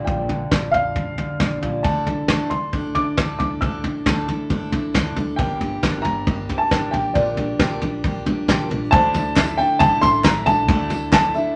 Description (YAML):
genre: indie folk with a building arrangement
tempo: 136 BPM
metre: 4/4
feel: straight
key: D minor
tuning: A4 = 440 Hz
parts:
  - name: dark upright piano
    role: melody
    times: 0.0-11.6 s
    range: D5 to E6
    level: -23 LUFS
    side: equal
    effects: none
  - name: fingerpicked steel-string acoustic guitar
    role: accompaniment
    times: 0.0-3.6 s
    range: F2 to D4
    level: -30 LUFS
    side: equal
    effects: none
  - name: upright bass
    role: bass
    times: 0.0-11.4 s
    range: G1 to D2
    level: -34 LUFS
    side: equal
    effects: none
  - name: soft brush drum kit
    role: drums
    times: 0.1-11.2 s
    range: kick drum, snare drum, toms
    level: -23 LUFS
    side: equal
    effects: none
  - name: picked steel-string acoustic guitar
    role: accompaniment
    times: 1.8-11.6 s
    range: G2 to A4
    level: -29 LUFS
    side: equal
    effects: none
  - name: nylon-string guitar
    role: second line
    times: 8.9-11.6 s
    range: C5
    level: -31 LUFS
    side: equal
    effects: none
  - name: clear baby grand piano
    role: accompaniment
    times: 8.9-11.6 s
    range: D2 to E5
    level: -34 LUFS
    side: equal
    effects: none
  - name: tambourine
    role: percussion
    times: 9.1-11.4 s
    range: none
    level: -46 LUFS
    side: equal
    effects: none
  - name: group handclap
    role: percussion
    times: 9.4-11.2 s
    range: none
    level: -36 LUFS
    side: equal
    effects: none
room: wet studio reverb, RT60 0.5 s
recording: nothing above 10.3 kHz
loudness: -20 LUFS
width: mono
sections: 0.0-8.9 A section; 8.9-11.6 B section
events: none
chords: 0.0 Bb6; 1.8 Dsus2; 5.4 Gm; 6.9 Bb6; 8.9 Dsus2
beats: | 0.07 0.52 0.96 1.40 | 1.84 2.29 2.73 3.17 | 3.62 4.06 4.50 4.94 | 5.38 5.83 6.27 6.71 | 7.16 7.60 8.04 8.48 | 8.92 9.36 9.80 10.24 | 10.68 11.12